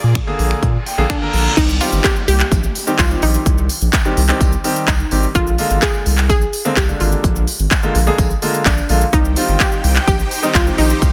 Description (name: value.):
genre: dance-pop.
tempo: 127 BPM.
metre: 4/4.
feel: straight.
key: C minor.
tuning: A4 = 439 Hz.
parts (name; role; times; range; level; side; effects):
supersaw chords; sustained chords; 0.0-1.5, 9.1-11.1 s; Bb3 to G5; -29 LUFS; equal; sidechain pumping.
saturated sub bass; bass; 0.0-11.1 s; G1 to Bb2; -19 LUFS; equal; sidechain pumping.
house drum kit; drums; 0.2-11.1 s; crash cymbal, finger snaps, handclaps, hi-hat, kick drum, shaker; -20 LUFS; equal; soft clipping on snare.
clear concert grand piano; accompaniment; 0.3-11.1 s; D3 to Bb5; -22 LUFS; equal; sidechain pumping.
reverse cymbal and downlifter; sound effects; 0.8-5.3 s; none; -29 LUFS; equal; none.
unison pluck; melody; 1.1-11.1 s; D4 to Ab4; -24 LUFS; equal; digital delay.
tambourine; percussion; 1.6-11.1 s; none; -37 LUFS; equal; none.
room: light reverb, digital ambience.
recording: dense, heavily limited modern master.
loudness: -16 LUFS.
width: mono.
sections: 0.0-1.6 A section; 1.6-11.1 B section.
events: grand piano fill 0.6-1.6; reverse cymbal 0.8-1.6.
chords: 0.0 Bb7; 1.6 Cm; 5.4 Bb7; 9.1 Cm.